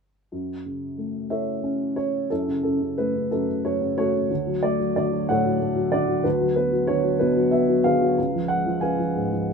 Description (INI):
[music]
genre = classical, lyrical solo piano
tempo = 92 BPM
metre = 3/4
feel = rubato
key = F# minor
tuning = A4 = 440 Hz
[part]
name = dark upright piano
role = solo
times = 0.3-9.5 s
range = C#2 to G#5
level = -21 LUFS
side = equal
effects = none
[sound]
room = light reverb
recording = minimal, uncompressed stereo recording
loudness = -21 LUFS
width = side -5 dB against mid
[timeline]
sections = 0.3-2.3 A section; 2.3-9.5 B section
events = none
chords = 0.3 F#m7; 4.3 Dmaj7; 6.3 Bm/D; 8.2 C#7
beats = | 0.33 0.98 1.63 | 2.30 2.98 3.65 | 4.30 4.96 5.61 | 6.25 6.89 7.53 | 8.18 8.82 9.48